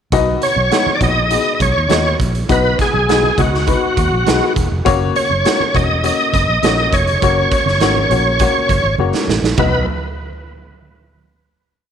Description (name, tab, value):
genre	uptempo 1960s-style soul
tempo	102 BPM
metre	4/4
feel	straight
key	B major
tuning	A4 = 441 Hz
part	warm upright piano	accompaniment	0.1-9.9 s	B1 to F#5	-20 LUFS	left 9 dB	none
part	vintage muted fingered electric bass	bass	0.1-9.9 s	E1 to D#2	-19 LUFS	equal	none
part	raw garage drum kit	drums	0.1-9.7 s	hi-hat, kick drum, ride cymbal, snare drum, toms	-19 LUFS	right 3 dB	none
part	congas	percussion	0.1-9.9 s	none	-27 LUFS	right 7 dB	none
part	bright tonewheel organ	melody	0.4-9.9 s	F#4 to D#5	-16 LUFS	right 1 dB	overdrive, chorus vibrato, fast rotary speaker, tube saturation, tape echo
room	moderate echo chamber reverb, RT60 1.4 s, small room ambience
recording	1960s-style stereo with parts hard left and right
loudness	-12 LUFS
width	side -8 dB against mid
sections	0.1-9.6 verse; 9.6-11.9 final chord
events	drum fill 9.0-9.6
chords	0.1 B; 4.9 F#; 9.6 B